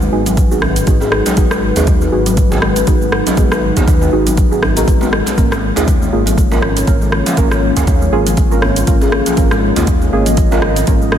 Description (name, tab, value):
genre	afro house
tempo	120 BPM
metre	4/4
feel	swing 57% on 16ths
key	G# dorian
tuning	A4 = 439 Hz
part	dark analog pad	sustained chords	0.0-11.2 s	G#3 to D#5	-20 LUFS	left 1 dB	chorus, phaser, sidechain pumping
part	kalimba	arpeggios	0.0-11.1 s	D#3 to G#4	-20 LUFS	left 2 dB	sidechain pumping, analog delay
part	dark detuned saw bass	bass	0.0-11.2 s	G#1 to D#2	-19 LUFS	equal	tube saturation, sidechain pumping
part	afro-pop drum kit	drums	0.0-11.2 s	hi-hat, rim click, shaker	-20 LUFS	right 1 dB	overdrive, studio reverb
part	djembe	percussion	0.0-11.1 s	none	-23 LUFS	right 2 dB	none
part	deep mellow chord stab	stabs	0.1-11.0 s	A#3 to B4	-20 LUFS	right 3 dB	chorus, sidechain pumping, analog delay
part	electronic kick drum	drums	0.4-11.0 s	none	-14 LUFS	equal	overdrive, studio reverb
room	moderate lush hall reverb, RT60 2.0 s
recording	dreamy mix soaked in reverb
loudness	-11 LUFS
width	side -9 dB against mid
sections	0.0-11.2 A section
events	none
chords	0.0 G#m7; 5.4 A#m/G#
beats	0.37 0.87 | 1.37 1.87 2.37 2.87 | 3.37 3.87 4.37 4.87 | 5.37 5.87 6.37 6.87 | 7.37 7.87 8.37 8.87 | 9.37 9.87 10.37 10.87